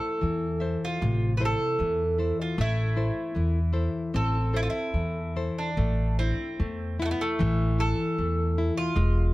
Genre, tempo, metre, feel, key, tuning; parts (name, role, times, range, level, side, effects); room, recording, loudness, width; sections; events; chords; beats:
fado-style ballad; 76 BPM; 2/4; rubato; A minor; A4 = 442 Hz
Irish bouzouki; melody; 0.0-9.3 s; A3 to B4; -30 LUFS; right 2 dB
nylon-string guitar; accompaniment; 0.0-9.3 s; C3 to E5; -30 LUFS; left 3 dB
upright bass; bass; 0.2-9.3 s; E1 to E2; -27 LUFS; equal
light reverb; -24 LUFS; side -18 dB against mid
0.0-5.8 A section; 5.8-9.3 A section
0.0 Am
0.23 | 1.02 1.80 | 2.58 3.36 | 4.14 4.94 | 5.77 6.60 | 7.41 8.19 | 8.96